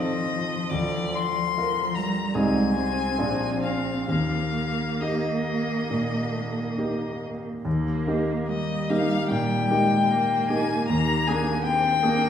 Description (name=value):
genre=classical, slow romantic movement for piano trio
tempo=64-82 BPM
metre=4/4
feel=rubato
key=Eb major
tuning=A4 = 442 Hz
part: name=rich violin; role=melody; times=0.0-12.3 s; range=D5 to C6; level=-27 LUFS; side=left 6 dB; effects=none
part: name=rich cello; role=second line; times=0.0-12.3 s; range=F3 to C4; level=-28 LUFS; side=right 2 dB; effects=none
part: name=clear grand piano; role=accompaniment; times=0.0-12.3 s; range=Bb1 to Bb4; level=-26 LUFS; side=equal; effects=none
room=wet recital hall reverb, RT60 1.6 s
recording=heard from further back in the room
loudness=-22 LUFS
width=side -9 dB against mid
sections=0.0-7.7 A section; 7.7-12.3 B section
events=none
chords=0.0 F7/Eb; 0.7 Bb/D; 2.4 Ab/C; 3.2 Bb9; 4.1 Eb; 10.9 Bb7/Eb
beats=| 0.71 1.57 2.35 3.19 | 4.09 5.01 5.90 6.78 | 7.65 8.49 9.30 10.10 | 10.89 11.65